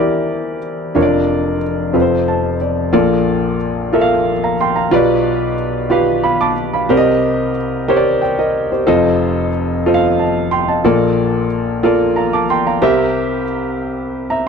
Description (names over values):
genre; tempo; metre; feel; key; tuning
gospel; 61 BPM (dotted quarters); 6/8; straight; Bb major; A4 = 437 Hz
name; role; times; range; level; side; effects
warm grand piano; solo; 0.0-14.5 s; F1 to D6; -13 LUFS; equal; none
room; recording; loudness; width
light reverb; dark, warm production; -13 LUFS; side -6 dB against mid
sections
0.0-2.9 A section; 2.9-14.5 B section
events
grand piano fill 1.9-2.9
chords
0.0 C7/E; 1.0 Bb/F; 1.9 F; 2.9 Bbmaj7; 4.9 G7/B; 6.9 Cm7; 8.9 F7; 10.8 Bbmaj7; 12.8 C7